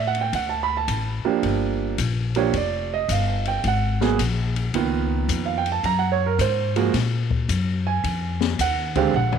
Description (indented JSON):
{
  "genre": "jazz, small-group swing and bop",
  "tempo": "109 BPM",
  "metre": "4/4",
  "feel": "swing 67% on 8ths",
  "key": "unclear",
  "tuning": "A4 = 440 Hz",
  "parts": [
    { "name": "warm grand piano", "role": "accompaniment", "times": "0.0-9.4 s", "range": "D3 to Cb6", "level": "-23 LUFS", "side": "right 10 dB", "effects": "none" },
    { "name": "upright bass", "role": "bass", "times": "0.0-9.4 s", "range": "F1 to Bb2", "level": "-24 LUFS", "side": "left 2 dB", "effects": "none" },
    { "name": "open jazz drum kit", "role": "drums", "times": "0.1-9.4 s", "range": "hi-hat, kick drum, ride cymbal, snare drum, toms", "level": "-30 LUFS", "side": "left 9 dB", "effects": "none" }
  ],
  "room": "light reverb, small room ambience",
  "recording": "1960s-style stereo with parts hard left and right",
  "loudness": "-20 LUFS",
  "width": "side -7 dB against mid",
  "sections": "0.0-9.4 A section",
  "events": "drum fill 9.1",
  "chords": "0.3 D5; 1.4 Gm7; 3.6 Abm9; 4.7 Db13; 5.8 Gbadd9; 8.0 Fm7"
}